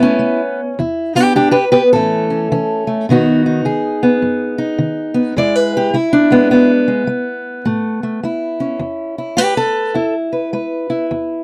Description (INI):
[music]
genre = acoustic country blues, solo or duo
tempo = 105 BPM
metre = 4/4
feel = swing 63% on 8ths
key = E major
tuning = A4 = 440 Hz
[part]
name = fingerpicked steel-string acoustic guitar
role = solo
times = 0.0-11.4 s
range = E2 to D5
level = -16 LUFS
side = equal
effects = none
[sound]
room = light reverb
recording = dry, close 1970s-style studio recording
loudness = -16 LUFS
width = mono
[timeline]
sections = 0.0-5.4 A section; 5.4-11.4 A section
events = none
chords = 0.0 A; 0.8 E; 1.9 A; 3.1 B; 5.4 E; 7.7 A; 9.9 E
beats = 0.21 | 0.78 1.35 1.93 2.50 | 3.07 3.64 4.21 4.79 | 5.36 5.93 6.51 7.08 | 7.65 8.23 8.80 9.37 | 9.95 10.52 11.09